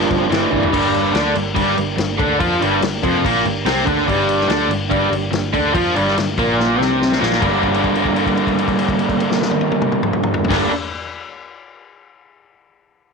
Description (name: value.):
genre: blues rock power trio and southern rock.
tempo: 144 BPM.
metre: 4/4.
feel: straight.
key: G minor.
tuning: A4 = 440 Hz.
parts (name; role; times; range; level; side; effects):
mellow tonewheel organ; sustained chords; 0.0-10.7 s; G3 to D5; -27 LUFS; right 11 dB; slow rotary speaker.
raw garage guitar; riff; 0.0-10.7 s; F2 to F4; -16 LUFS; equal; overdrive, harmonic tremolo.
vintage muted picked electric bass; bass; 0.0-10.7 s; F1 to F2; -25 LUFS; equal; none.
vintage drum kit; drums; 0.1-10.6 s; crash cymbal, kick drum, snare drum, toms; -22 LUFS; left 4 dB; none.
room: light reverb, small room reverb.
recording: 1960s-style stereo.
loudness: -15 LUFS.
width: side -4 dB against mid.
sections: 0.7-7.4 A section; 7.4-10.8 B section.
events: drum fill 0.5, 6.6-7.4; held note 7.4-10.5.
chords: 0.0 Gm.